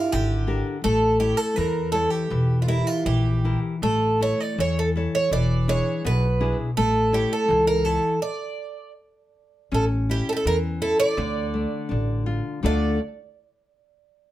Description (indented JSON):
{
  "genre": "fado-style ballad",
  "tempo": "82 BPM",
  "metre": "2/4",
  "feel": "rubato",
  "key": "D harmonic minor",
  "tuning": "A4 = 440 Hz",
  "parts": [
    { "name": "picked twelve-string acoustic guitar", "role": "melody", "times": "0.0-13.0 s", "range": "E4 to D5", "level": "-23 LUFS", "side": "right 2 dB", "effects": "none" },
    { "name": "nylon-string guitar", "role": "accompaniment", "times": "0.0-13.0 s", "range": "B2 to C#5", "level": "-26 LUFS", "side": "left 3 dB", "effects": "none" },
    { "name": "upright bass", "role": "bass", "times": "0.1-13.0 s", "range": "E1 to E2", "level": "-24 LUFS", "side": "equal", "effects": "none" }
  ],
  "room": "light reverb",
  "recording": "none",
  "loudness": "-20 LUFS",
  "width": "side -14 dB against mid",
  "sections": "0.0-9.7 A section; 9.7-12.6 B section; 12.6-14.1 C section",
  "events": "stop 8.2-9.7",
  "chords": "0.0 Gm; 0.8 A; 2.3 Edim; 3.8 A; 5.3 E7; 6.8 A; 8.2 N.C.; 9.7 A; 11.2 Dm"
}